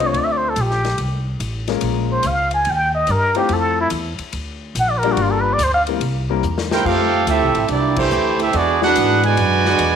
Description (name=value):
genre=jazz, big band swing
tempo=143 BPM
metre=4/4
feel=swing 67% on 8ths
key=F major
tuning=A4 = 441 Hz
part: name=trumpet with plunger mute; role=melody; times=0.0-5.8 s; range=E4 to Ab5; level=-18 LUFS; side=equal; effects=none
part: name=warm grand piano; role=accompaniment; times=0.0-9.3 s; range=E3 to C5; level=-23 LUFS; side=left 12 dB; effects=none
part: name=upright bass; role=bass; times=0.0-10.0 s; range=G1 to G#2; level=-22 LUFS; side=equal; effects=none
part: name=swinging big-band drum kit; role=drums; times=0.0-9.9 s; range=crash cymbal, hi-hat, kick drum, ride cymbal, snare drum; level=-28 LUFS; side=left 6 dB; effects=none
part: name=clear trumpet section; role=melody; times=6.7-10.0 s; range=A3 to G#5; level=-17 LUFS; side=right 3 dB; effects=slapback echo
part: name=warm trombone section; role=second line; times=6.7-10.0 s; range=B2 to G4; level=-21 LUFS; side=right 11 dB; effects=none
part: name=warm saxophone section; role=sustained chords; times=8.0-10.0 s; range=E3 to G4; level=-25 LUFS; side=left 1 dB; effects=none
room=moderate echo chamber reverb, RT60 1.3 s, studio ambience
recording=1960s-style stereo with parts hard left and right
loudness=-15 LUFS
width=side -8 dB against mid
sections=0.0-6.8 A section; 6.8-10.0 B section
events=muted trumpet solo 0.0-6.8; drum fill 6.4-6.8; band accent 7.9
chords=0.1 Dm7; 1.8 Bbm7; 2.7 Ebadd9; 3.5 Fmaj7; 4.3 Bb6; 5.2 Gm7; 6.0 C7; 6.8 Fmaj9; 8.5 E9